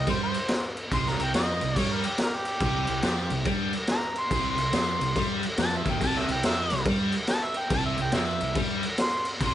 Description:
blues rock power trio and southern rock; 141 BPM; 4/4; swing 64% on 8ths; C mixolydian; A4 = 440 Hz
mellow harmonica; melody; 0.0-9.5 s; G4 to C6; -30 LUFS; equal; overdrive, slapback echo
sludgy distorted guitar; riff; 0.0-9.5 s; C3 to G3; -30 LUFS; right 2 dB; overdrive
fuzz fingered electric bass; bass; 0.0-9.5 s; C2 to G2; -33 LUFS; left 1 dB; overdrive
raw garage drum kit; drums; 0.1-9.5 s; crash cymbal, kick drum, snare drum; -27 LUFS; equal
light reverb; nothing above 11.0 kHz; -24 LUFS; side -12 dB against mid
0.0-9.5 A section
harmonica solo 0.0-9.5
0.0 C5

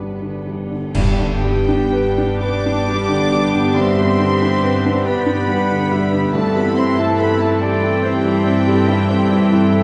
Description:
classical, romantic movement for piano and orchestra; 40-48 BPM (dotted quarters); 12/8; rubato; G major; A4 = 440 Hz
dark studio violin section; melody; 0.0-9.8 s; B3 to D6; -28 LUFS; equal
warm baby grand piano; melody; 0.0-9.8 s; G2 to B4; -22 LUFS; equal
warm studio violin section; second line; 0.0-9.8 s; D4 to B4; -29 LUFS; equal
warm studio viola section; accompaniment; 0.0-9.8 s; E3 to D4; -25 LUFS; equal
rich studio double bass section; bass; 0.0-9.8 s; G1 to G2; -27 LUFS; equal
warm studio cello section; bass; 0.0-9.8 s; G3 to D4; -26 LUFS; equal
hollow small flute group; second line; 0.9-9.8 s; G4 to D5; -27 LUFS; equal
clash cymbals and concert bass drum; percussion; 0.9-2.8 s; -28 LUFS; equal
timpani; percussion; 0.9-2.4 s; G2; -28 LUFS; equal
mellow French horn section; sustained chords; 1.0-9.8 s; A3 to E4; -29 LUFS; equal
clear clarinet; second line; 3.7-9.8 s; C5 to F#5; -30 LUFS; equal
wet scoring stage reverb, RT60 1.9 s; heard from further back in the room, nothing above 10.4 kHz; -17 LUFS; mono
1.0-9.8 A section
band accent 1.0-1.9
0.0 G; 6.3 Am7/G

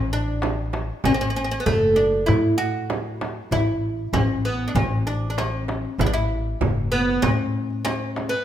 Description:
Arabic maqam ensemble; 97 BPM; 4/4; straight; A maqam rast; A4 = 440 Hz
oud; melody; 0.0-8.4 s; A3 to F#4; -23 LUFS; equal
upright bass; bass; 0.0-8.3 s; F#1 to A2; -26 LUFS; left 1 dB
darbuka; percussion; 0.3-8.4 s; -29 LUFS; left 3 dB
frame drum; percussion; 0.4-8.3 s; -28 LUFS; right 6 dB
light reverb; minimal, uncompressed stereo recording; -20 LUFS; side -10 dB against mid
0.0-8.4 A section

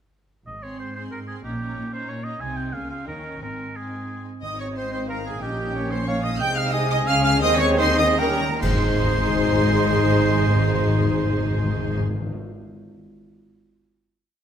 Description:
classical, dramatic, fast romantic movement for symphony orchestra; 136-187 BPM; 3/4; rubato; Ab major; A4 = 440 Hz
warm oboe; second line; 0.5-12.0 s; G4 to Ab5; -30 LUFS; right 1 dB
clear symphonic double bass section; bass; 0.5-12.0 s; Ab1 to Eb2; -29 LUFS; right 3 dB
rich symphonic cello section; bass; 0.5-12.0 s; Ab2 to Eb3; -28 LUFS; right 1 dB
warm symphonic violin section; melody; 0.6-12.0 s; G5 to G6; -30 LUFS; right 1 dB
rich symphonic violin section; second line; 0.6-12.0 s; Eb4 to G5; -33 LUFS; left 1 dB
rich symphonic viola section; accompaniment; 0.6-12.0 s; Bb3 to Ab4; -30 LUFS; right 1 dB
flute section; second line; 4.4-12.0 s; G4 to G5; -28 LUFS; right 3 dB
mellow French horn section; sustained chords; 4.4-12.0 s; Eb3 to Eb4; -28 LUFS; left 4 dB
timpani; percussion; 4.4-4.9, 8.2-12.4 s; Ab2 to Eb3; -27 LUFS; left 3 dB
warm clarinet; second line; 4.8-12.0 s; Eb4 to Ab5; -29 LUFS; left 2 dB
cymbal swell, clash cymbals and concert bass drum; percussion; 6.4-9.5 s; -30 LUFS; equal
moderate scoring stage reverb, RT60 1.6 s; -20 LUFS; side -8 dB against mid
0.5-4.4 A section; 4.4-8.6 A section; 8.6-11.2 final chord
slowing down 5.9-8.6; timpani fill 8.2-8.6; band accent 8.6-9.1
0.5 Ab; 1.4 Eb7/Bb; 2.4 Ab/C; 2.7 Bbm7/Db; 3.1 Eb7; 3.4 Ab; 5.4 Eb7/Bb; 6.4 Ab/C; 7.1 Db; 7.4 Ab/Eb; 8.2 Eb7; 8.6 Ab

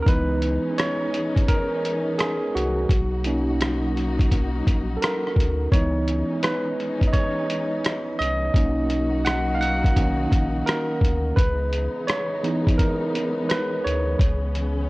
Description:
lo-fi hip hop; 85 BPM; 4/4; swing 64% on 16ths; C# dorian; A4 = 445 Hz
barky tine electric piano; accompaniment; 0.0-14.9 s; D#3 to F#5; -24 LUFS; right 1 dB; medium stereo tremolo
warm studio string section; sustained chords; 0.0-14.9 s; C#3 to F#4; -31 LUFS; left 2 dB
warm sub bass; bass; 0.0-14.9 s; A#1 to D2; -26 LUFS; equal
lo-fi sampler-style drum kit; drums; 0.1-14.8 s; hi-hat, kick drum, rim click; -22 LUFS; equal; vintage 12-bit sampler grit
light reverb, digital ambience; worn, warbling old tape, cassette tape, warbly pitch drift; -20 LUFS; side -21 dB against mid
0.0-14.9 A section
tine electric piano solo 0.0-14.9
0.1 C#m9; 2.9 Bmaj7; 5.7 C#m9; 8.5 Bmaj7; 11.4 C#m9; 14.2 C#m7

